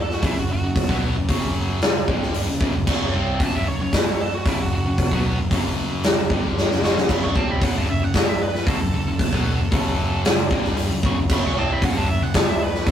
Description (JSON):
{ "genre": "hard rock", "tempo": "114 BPM", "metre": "4/4", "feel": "straight", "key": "F# minor", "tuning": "A4 = 440 Hz", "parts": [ { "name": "biting lead guitar", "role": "melody", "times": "0.0-12.9 s", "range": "E4 to C#6", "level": "-29 LUFS", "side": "right 1 dB", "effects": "overdrive" }, { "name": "huge arena drum kit", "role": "drums", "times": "0.1-12.9 s", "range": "crash cymbal, hi-hat, kick drum, snare drum", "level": "-20 LUFS", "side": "equal", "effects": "none" }, { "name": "high-gain distorted guitar", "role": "riff", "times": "0.2-12.9 s", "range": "F#2 to B#3", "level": "-26 LUFS", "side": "equal", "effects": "distortion" }, { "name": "picked electric bass", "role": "bass", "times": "0.2-12.9 s", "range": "F#1 to B#1", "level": "-28 LUFS", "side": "equal", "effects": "none" } ], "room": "moderate small room reverb, RT60 0.5 s", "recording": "rough rehearsal-room recording, tube saturation", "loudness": "-18 LUFS", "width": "side -9 dB against mid", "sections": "0.0-12.9 A section", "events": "lead electric guitar solo 0.0-12.9; drum fill 6.6-7.1", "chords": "0.0 F#5" }